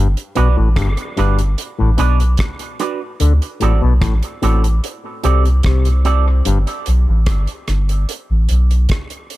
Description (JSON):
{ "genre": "dub reggae", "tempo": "74 BPM", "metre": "4/4", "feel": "straight", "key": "G major", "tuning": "A4 = 440 Hz", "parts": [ { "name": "mellow clav", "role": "riff", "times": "0.0-6.6 s", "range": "G2 to D3", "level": "-22 LUFS", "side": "left 4 dB", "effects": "auto-wah, dub echo" }, { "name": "soft dub sub bass", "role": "bass", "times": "0.0-8.9 s", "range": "G1 to D2", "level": "-13 LUFS", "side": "equal", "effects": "none" }, { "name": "damped 70s drum kit", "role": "drums", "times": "0.2-9.4 s", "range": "hi-hat, kick drum, rim click", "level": "-22 LUFS", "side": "equal", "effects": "none" }, { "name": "electric guitar with an envelope filter", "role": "accompaniment", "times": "0.4-6.2 s", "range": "C4 to D5", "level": "-24 LUFS", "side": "right 7 dB", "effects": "lush chorus, dub echo" } ], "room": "studio reverb", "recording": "none", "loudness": "-14 LUFS", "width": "side -17 dB against mid", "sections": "0.0-9.4 A section", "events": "none", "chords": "0.0 Gmaj7; 3.2 D7; 6.5 G" }